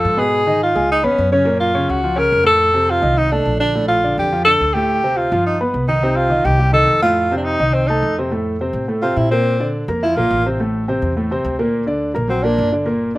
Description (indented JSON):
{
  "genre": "Afro-Cuban jazz",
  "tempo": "210 BPM",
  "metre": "4/4",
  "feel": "straight",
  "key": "F major from 8.3 s",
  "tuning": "A4 = 439 Hz",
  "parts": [
    { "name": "warm tenor saxophone", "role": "melody", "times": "0.0-12.7 s", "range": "C4 to Bb4", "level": "-16 LUFS", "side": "equal", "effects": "slapback echo" },
    { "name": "warm baby grand piano", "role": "accompaniment", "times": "0.0-13.2 s", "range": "A2 to Cb6", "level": "-20 LUFS", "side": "equal", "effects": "none" },
    { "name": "upright bass", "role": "bass", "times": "0.0-13.2 s", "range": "G1 to Bb2", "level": "-22 LUFS", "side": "equal", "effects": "none" }
  ],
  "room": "little or no reverb",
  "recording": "recorded outdoors, with no room sound",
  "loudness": "-14 LUFS",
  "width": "side -18 dB against mid",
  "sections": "0.0-8.3 A section; 8.3-13.2 B section",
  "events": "tenor saxophone solo 8.3-13.2",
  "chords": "0.3 Abm; 0.9 Dbsus2; 1.5 Gbmaj7; 2.6 F7; 3.7 Bb6; 4.9 Dm7; 5.5 G7; 6.0 Cmadd11; 7.2 F7; 8.3 F; 9.5 Bb; 10.6 Am; 11.7 Daug"
}